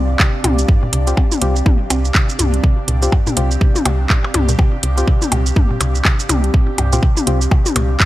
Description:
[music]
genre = minimal techno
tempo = 123 BPM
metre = 4/4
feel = swing 60% on 16ths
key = unclear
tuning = A4 = 440 Hz
[part]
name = woody FM bass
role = bass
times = 0.0-8.0 s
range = C2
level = -17 LUFS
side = equal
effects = sidechain pumping
[part]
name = airy breathy pad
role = texture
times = 0.0-8.1 s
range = C4 to F5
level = -25 LUFS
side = equal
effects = chorus, sidechain pumping
[part]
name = bubbling stepped-filter texture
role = texture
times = 0.0-8.1 s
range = D4 to D5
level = -32 LUFS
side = right 1 dB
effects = chorus, built-in reverb, sidechain pumping
[part]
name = mallet-like synth pluck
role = riff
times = 0.2-8.1 s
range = G2 to C4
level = -23 LUFS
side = equal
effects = chorus, sidechain pumping, tape echo
[part]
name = electronic kick drum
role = drums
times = 0.2-8.1 s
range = none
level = -14 LUFS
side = equal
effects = none
[part]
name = house drum kit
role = drums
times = 0.2-8.1 s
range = handclaps, hi-hat, shaker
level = -18 LUFS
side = right 2 dB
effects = none
[part]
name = electronic toms and percussion blips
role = percussion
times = 0.4-7.9 s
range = none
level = -22 LUFS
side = left 3 dB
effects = dub echo
[part]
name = percussive organ stab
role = stabs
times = 1.1-7.4 s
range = C4 to G4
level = -26 LUFS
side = left 2 dB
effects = chorus, dub echo
[sound]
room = digital ambience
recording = none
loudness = -13 LUFS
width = side -16 dB against mid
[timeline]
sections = 0.0-8.1 A section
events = none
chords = 0.0 Csus4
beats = 0.20 | 0.69 1.17 1.66 2.15 | 2.64 3.12 3.61 4.10 | 4.59 5.08 5.56 6.05 | 6.54 7.03 7.51 8.00

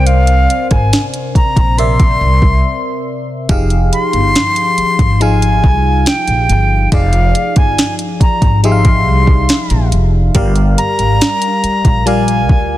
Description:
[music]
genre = contemporary R&B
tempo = 70 BPM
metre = 4/4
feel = straight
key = F dorian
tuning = A4 = 441 Hz
[part]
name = reedy silver concert flute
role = melody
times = 0.0-12.8 s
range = F5 to C6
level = -16 LUFS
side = equal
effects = digital delay
[part]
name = FM electric piano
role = accompaniment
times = 0.0-12.8 s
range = C3 to F5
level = -18 LUFS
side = left 1 dB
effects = chorus
[part]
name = upright bass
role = bass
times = 0.0-12.8 s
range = F1 to D2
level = -13 LUFS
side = equal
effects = none
[part]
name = smooth R&B drum kit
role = drums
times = 0.1-12.7 s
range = hi-hat, kick drum, rim click, snare drum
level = -13 LUFS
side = equal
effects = none
[sound]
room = studio reverb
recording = dense, heavily limited modern master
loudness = -10 LUFS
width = side -14 dB against mid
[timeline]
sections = 0.0-12.8 A section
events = break 2.6-3.5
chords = 0.0 C7; 3.5 Fm7; 10.3 Gm7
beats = | 0.06 0.92 1.78 2.63 | 3.49 4.35 5.21 6.06 | 6.92 7.78 8.63 9.49 | 10.35 11.21 12.06

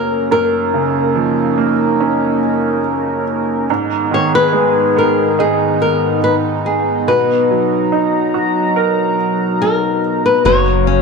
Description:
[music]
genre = pop ballad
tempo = 71 BPM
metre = 4/4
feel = straight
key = F# major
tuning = A4 = 438 Hz
[part]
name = flamenco guitar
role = melody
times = 0.0-11.0 s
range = G#4 to C#5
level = -15 LUFS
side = left 4 dB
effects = slapback echo
[part]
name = bright upright piano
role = accompaniment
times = 0.0-11.0 s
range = F#2 to A#4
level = -18 LUFS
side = right 8 dB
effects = none
[part]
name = chorused pulse-width pad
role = sustained chords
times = 0.0-11.0 s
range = G#2 to A#5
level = -18 LUFS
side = left 2 dB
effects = none
[part]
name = saturated sub bass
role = bass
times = 10.4-11.0 s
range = F#1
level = -16 LUFS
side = left 1 dB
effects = none
[part]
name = picked steel-string acoustic guitar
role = arpeggios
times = 10.5-11.0 s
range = F#3 to C#4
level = -19 LUFS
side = left 13 dB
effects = none
[sound]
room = wet echo chamber reverb, RT60 2.1 s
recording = 1960s-style stereo with parts hard left and right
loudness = -12 LUFS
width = side -4 dB against mid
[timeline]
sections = 0.0-10.5 A section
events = none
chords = 0.0 F#maj7; 3.7 G#madd9; 7.1 Bmaj7; 10.5 F#maj7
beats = | 0.31 1.16 2.00 2.85 | 3.69 4.54 5.38 6.23 | 7.07 7.92 8.76 9.61 | 10.45

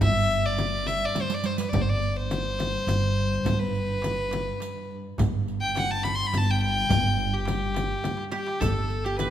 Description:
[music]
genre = Arabic maqam ensemble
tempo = 70 BPM (dotted quarters)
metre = 6/8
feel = straight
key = G maqam ajam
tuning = A4 = 441 Hz
[part]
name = warm violin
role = melody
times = 0.0-9.3 s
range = G4 to C6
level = -28 LUFS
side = left 1 dB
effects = none
[part]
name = upright bass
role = bass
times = 0.0-9.3 s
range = G1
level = -29 LUFS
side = right 1 dB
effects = none
[part]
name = dark chamber cello section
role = drone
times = 0.0-8.7 s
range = G2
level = -33 LUFS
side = equal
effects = none
[part]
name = darbuka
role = percussion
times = 0.0-8.6 s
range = none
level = -32 LUFS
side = right 3 dB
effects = none
[part]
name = frame drum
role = percussion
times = 0.0-9.3 s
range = none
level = -32 LUFS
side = left 3 dB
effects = none
[part]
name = riq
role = percussion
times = 0.0-9.3 s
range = none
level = -36 LUFS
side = right 6 dB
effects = none
[part]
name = qanun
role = second line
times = 8.3-9.3 s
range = G4 to B4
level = -30 LUFS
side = right 2 dB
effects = none
[sound]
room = moderate scoring stage reverb, RT60 2.0 s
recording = minimal, uncompressed stereo recording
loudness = -23 LUFS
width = side -11 dB against mid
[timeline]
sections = 0.0-8.6 A section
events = drum fill 1.2-1.7, 8.1-8.6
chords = none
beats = | 0.02 0.88 | 1.74 2.60 | 3.46 4.33 | 5.18 6.04 | 6.90 7.76 | 8.62

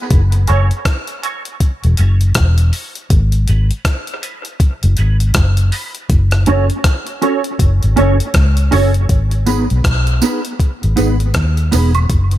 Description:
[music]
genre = dub reggae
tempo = 80 BPM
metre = 4/4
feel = swing 60% on 16ths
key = G# phrygian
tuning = A4 = 441 Hz
[part]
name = vintage muted fingered electric bass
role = bass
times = 0.1-12.4 s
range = E1 to D#2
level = -12 LUFS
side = equal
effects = none
[part]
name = breakbeat sampler-style drum kit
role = drums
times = 0.1-12.4 s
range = hi-hat, kick drum, rim click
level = -16 LUFS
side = equal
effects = none
[part]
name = mellow electric guitar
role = accompaniment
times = 0.5-12.0 s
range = B3 to C#5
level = -19 LUFS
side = right 3 dB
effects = ensemble chorus, high-pass filter, dub echo
[part]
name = tambourine and woodblock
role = percussion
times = 9.5-12.1 s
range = none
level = -26 LUFS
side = right 7 dB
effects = high-pass filter on perc, dub echo
[sound]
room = digital ambience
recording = none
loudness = -12 LUFS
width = side -14 dB against mid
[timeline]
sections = 0.0-9.1 A section; 9.1-12.4 B section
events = filter sweep 0.0-6.1; part muted 0.1-9.1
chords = 0.1 F#m; 3.1 G#m; 6.1 F#m; 9.1 G#m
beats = | 0.11 0.86 1.61 2.35 | 3.10 3.85 4.60 5.35 | 6.10 6.85 7.60 8.35 | 9.10 9.85 10.59 11.34 | 12.09

